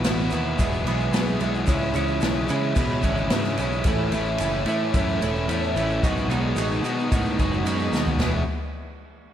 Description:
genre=indie rock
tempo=110 BPM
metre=4/4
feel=straight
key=E major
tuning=A4 = 440 Hz
part: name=biting overdriven guitar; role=riff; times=0.0-8.4 s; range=E2 to G#4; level=-27 LUFS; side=left 5 dB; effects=spring reverb
part: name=twelve-string electric guitar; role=riff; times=0.0-8.4 s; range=E2 to F#4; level=-27 LUFS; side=right 4 dB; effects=analog chorus, tape echo
part: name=growling picked electric bass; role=bass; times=0.0-8.4 s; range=E1 to C#3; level=-27 LUFS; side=equal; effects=overdrive
part: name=unplugged drum kit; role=drums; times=0.0-8.3 s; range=china cymbal, kick drum, ride cymbal, snare drum, toms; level=-27 LUFS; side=equal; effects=none
part: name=egg shaker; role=percussion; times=0.0-8.4 s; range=none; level=-45 LUFS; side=right 7 dB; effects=none
room=moderate lush hall reverb, RT60 2.2 s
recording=big arena sound, faint mains hum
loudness=-21 LUFS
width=side -10 dB against mid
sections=0.0-8.2 A section; 8.2-9.3 B section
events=drum fill 7.9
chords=0.0 Bsus4; 0.6 Eadd9; 1.7 C#m; 3.8 A; 6.0 B6; 8.2 Eadd9

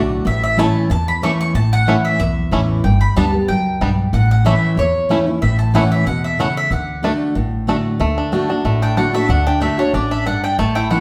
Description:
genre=bluegrass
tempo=186 BPM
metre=4/4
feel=straight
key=D major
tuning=A4 = 440 Hz
part: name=mandolin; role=melody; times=0.0-11.0 s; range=C#5 to C#6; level=-23 LUFS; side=equal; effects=none
part: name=picked steel-string acoustic guitar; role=accompaniment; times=0.0-11.0 s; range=E2 to G4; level=-20 LUFS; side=equal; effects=none
part: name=upright bass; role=bass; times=0.0-11.0 s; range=G1 to E2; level=-22 LUFS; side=equal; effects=none
part: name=bluegrass banjo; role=arpeggios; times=0.6-11.0 s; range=G3 to E4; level=-24 LUFS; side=equal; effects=none
room=wet studio reverb, RT60 0.9 s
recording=heard from further back in the room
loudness=-17 LUFS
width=mono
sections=0.0-8.0 A section; 8.0-11.0 B section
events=mandolin solo 8.0-11.0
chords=0.3 A; 2.8 G; 4.1 A; 6.7 D

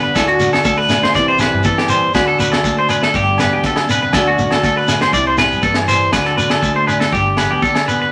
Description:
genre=highlife guitar band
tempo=120 BPM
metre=4/4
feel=straight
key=G major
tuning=A4 = 438 Hz
part: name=nylon-string guitar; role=accompaniment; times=0.0-8.1 s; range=G2 to G4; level=-22 LUFS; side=equal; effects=none
part: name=electric guitar at the edge of break-up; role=arpeggios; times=0.0-8.1 s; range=F#4 to D5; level=-18 LUFS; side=equal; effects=none
part: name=upright bass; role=bass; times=0.0-8.0 s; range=G1 to G2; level=-28 LUFS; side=equal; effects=none
part: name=tight funk drum kit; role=drums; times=0.2-7.9 s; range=kick drum, snare drum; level=-23 LUFS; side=equal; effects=none
part: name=agogo bells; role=percussion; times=0.2-7.9 s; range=none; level=-26 LUFS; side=equal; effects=none
part: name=congas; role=percussion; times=0.2-7.7 s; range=none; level=-29 LUFS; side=equal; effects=none
part: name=shekere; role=percussion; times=0.2-8.0 s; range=none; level=-26 LUFS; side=equal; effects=none
room=wet studio reverb, RT60 0.8 s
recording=none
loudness=-15 LUFS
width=mono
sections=0.0-8.1 A section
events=none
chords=0.2 D; 1.1 C; 2.1 D; 3.1 G; 4.1 D; 5.1 C; 6.1 D; 7.1 G

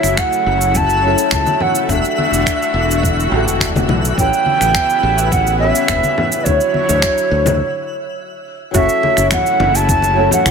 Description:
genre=sunset chillout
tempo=105 BPM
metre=4/4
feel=straight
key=unclear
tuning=A4 = 440 Hz
part: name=mellow silver concert flute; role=melody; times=0.0-10.5 s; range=C#5 to A5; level=-17 LUFS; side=right 1 dB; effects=tape echo
part: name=flamenco guitar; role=accompaniment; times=0.0-10.5 s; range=F#3 to C#5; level=-21 LUFS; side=moving between left 5 dB and right 2 dB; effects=auto-pan, tape echo
part: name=lush unison pad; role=sustained chords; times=0.0-10.5 s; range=C#3 to C#5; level=-23 LUFS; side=left 1 dB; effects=chorus, vintage 12-bit sampler grit
part: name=fingered electric bass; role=bass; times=0.0-10.5 s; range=E1 to D2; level=-19 LUFS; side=equal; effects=none
part: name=electronic finger snaps, cabasa and congas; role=drums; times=0.0-10.5 s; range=none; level=-20 LUFS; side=equal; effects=none
part: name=twinkling granular texture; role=texture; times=0.3-7.6 s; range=E5 to F#6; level=-27 LUFS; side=equal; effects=built-in reverb
part: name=electronic kick drum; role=drums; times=0.2-10.5 s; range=none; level=-21 LUFS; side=equal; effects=none
part: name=congas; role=percussion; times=0.8-10.4 s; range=none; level=-24 LUFS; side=left 2 dB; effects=none
part: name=steel pan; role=arpeggios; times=8.7-10.5 s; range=E4 to F#4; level=-24 LUFS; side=right 3 dB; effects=tape echo
room=light reverb, studio reverb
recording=none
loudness=-12 LUFS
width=side -6 dB against mid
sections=0.0-8.7 A section; 8.7-10.5 B section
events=break 7.6-8.7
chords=0.0 F#m7; 1.9 Em11; 4.2 A13; 6.5 Dmaj9; 8.7 F#m7

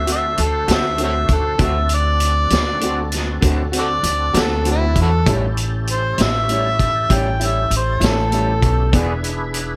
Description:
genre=slow blues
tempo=65 BPM (dotted quarters)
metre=12/8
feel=straight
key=unclear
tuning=A4 = 440 Hz
part: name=overdriven harmonica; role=melody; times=0.0-8.9 s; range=E4 to G5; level=-23 LUFS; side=equal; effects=none
part: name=tonewheel organ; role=sustained chords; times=0.0-9.8 s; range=C4 to C5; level=-32 LUFS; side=equal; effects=overdrive, chorus vibrato, slow rotary speaker
part: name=upright bass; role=bass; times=0.0-9.8 s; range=E1 to E2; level=-22 LUFS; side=equal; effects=none
part: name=electric guitar through a small old amp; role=accompaniment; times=0.1-9.1 s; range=A2 to G#4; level=-27 LUFS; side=equal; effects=harmonic tremolo
part: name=vintage drum kit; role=drums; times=0.1-9.7 s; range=hi-hat, kick drum, snare drum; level=-23 LUFS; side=equal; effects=none
room=light reverb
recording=none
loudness=-18 LUFS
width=mono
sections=0.0-9.8 A section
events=harmonica solo 0.0-9.8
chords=0.0 D7; 5.3 A7; 8.9 E7

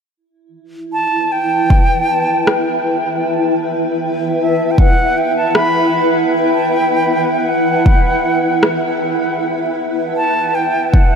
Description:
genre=ambient dub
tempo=78 BPM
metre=4/4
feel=straight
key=E minor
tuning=A4 = 440 Hz
part: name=granular cloud pad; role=sustained chords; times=0.8-11.2 s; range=E4 to E5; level=-16 LUFS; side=equal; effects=built-in reverb, lush chorus
part: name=concert flute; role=melody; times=0.9-11.2 s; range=E5 to B5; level=-17 LUFS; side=right 1 dB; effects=dub echo
part: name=electronic kick drum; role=drums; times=1.7-11.1 s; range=none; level=-10 LUFS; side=equal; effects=overdrive, small room ambience
part: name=electronic rim click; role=drums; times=2.5-8.8 s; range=none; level=-22 LUFS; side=equal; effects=overdrive, small room ambience
room=wet huge ambient reverb, RT60 8.2 s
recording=dreamy mix soaked in reverb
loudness=-13 LUFS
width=side -6 dB against mid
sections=0.2-11.2 A section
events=none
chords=0.2 Em

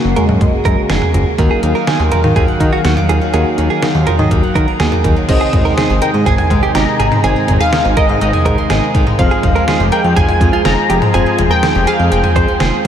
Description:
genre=synth-pop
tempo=123 BPM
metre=4/4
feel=straight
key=unclear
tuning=A4 = 440 Hz
part: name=funky polysynth comp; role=melody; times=0.0-1.1, 5.3-12.8 s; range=Ab3 to Bb5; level=-19 LUFS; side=left 2 dB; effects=chorus, tape echo
part: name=FM electric piano with auto-pan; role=accompaniment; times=0.0-12.9 s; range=Bb3 to C5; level=-23 LUFS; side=left 2 dB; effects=none
part: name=brassy analog pad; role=sustained chords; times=0.0-12.9 s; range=C3 to F5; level=-20 LUFS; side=equal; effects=chorus
part: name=fat analog bass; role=bass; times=0.0-12.9 s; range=F1 to Eb3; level=-16 LUFS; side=equal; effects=none
part: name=direct-recorded clean electric guitar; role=second line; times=0.2-12.9 s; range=F4 to C5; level=-20 LUFS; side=right 5 dB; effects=lush chorus, tape echo
part: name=detuned 8-bit digital drum machine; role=drums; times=0.2-12.9 s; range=cowbell, crash cymbal, hi-hat, kick drum, snare drum, toms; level=-16 LUFS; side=equal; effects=none
part: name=steel-string zither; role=arpeggios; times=1.4-12.9 s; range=Eb3 to D6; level=-23 LUFS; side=right 1 dB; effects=tape echo
room=moderate huge ambient reverb, RT60 9.3 s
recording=dreamy mix soaked in reverb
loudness=-11 LUFS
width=side -9 dB against mid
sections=0.0-5.3 A section; 5.3-12.9 B section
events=none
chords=0.0 Gb; 1.4 Ebmadd9; 5.3 Ab; 9.2 Fmadd9

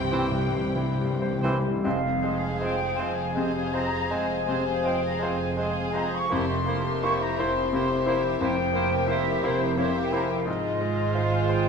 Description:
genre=classical, romantic movement for piano and orchestra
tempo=45-60 BPM (dotted quarters)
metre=12/8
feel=rubato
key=F minor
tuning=A4 = 440 Hz
part: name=clear grand piano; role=melody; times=0.0-11.7 s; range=F2 to C5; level=-29 LUFS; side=left 4 dB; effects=none
part: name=dark studio violin section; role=melody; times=0.0-11.7 s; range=C5 to G5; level=-39 LUFS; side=left 4 dB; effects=none
part: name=dark studio violin section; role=second line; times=0.0-11.7 s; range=E4 to C5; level=-39 LUFS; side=left 3 dB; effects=none
part: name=flute section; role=second line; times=0.0-11.7 s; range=C5 to Db6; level=-31 LUFS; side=equal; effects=none
part: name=rich studio viola section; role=accompaniment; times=0.0-11.7 s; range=E3 to Ab4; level=-35 LUFS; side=right 2 dB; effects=none
part: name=mellow French horn section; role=sustained chords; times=0.0-11.7 s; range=E3 to C5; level=-32 LUFS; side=left 3 dB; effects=none
part: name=mellow trumpet section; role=stabs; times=0.0-1.4 s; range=G4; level=-38 LUFS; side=equal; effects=none
part: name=dark studio cello section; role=bass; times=0.0-11.7 s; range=F2 to C3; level=-35 LUFS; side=right 5 dB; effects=none
part: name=mellow tuba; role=bass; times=0.0-1.6 s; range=C2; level=-37 LUFS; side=right 5 dB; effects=none
part: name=warm studio double bass section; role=bass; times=0.0-11.7 s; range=F1 to C2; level=-33 LUFS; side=right 5 dB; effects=none
part: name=timpani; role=percussion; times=0.0-1.8 s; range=C3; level=-30 LUFS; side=equal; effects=none
part: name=bright clarinet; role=second line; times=0.1-11.7 s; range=C4 to F4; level=-37 LUFS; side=left 1 dB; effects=none
part: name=warm cor anglais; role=second line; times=0.1-11.7 s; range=C5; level=-36 LUFS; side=right 4 dB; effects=none
part: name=warm bassoon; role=accompaniment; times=0.1-11.7 s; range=E3 to Bb3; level=-36 LUFS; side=right 3 dB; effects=none
room=moderate scoring stage reverb, RT60 1.5 s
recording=none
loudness=-23 LUFS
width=side -6 dB against mid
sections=0.0-1.8 A section; 1.8-11.7 B section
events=timpani fill 0.0-1.8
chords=0.0 C; 1.8 Fm; 6.3 C7/F; 10.5 Fm/Ab

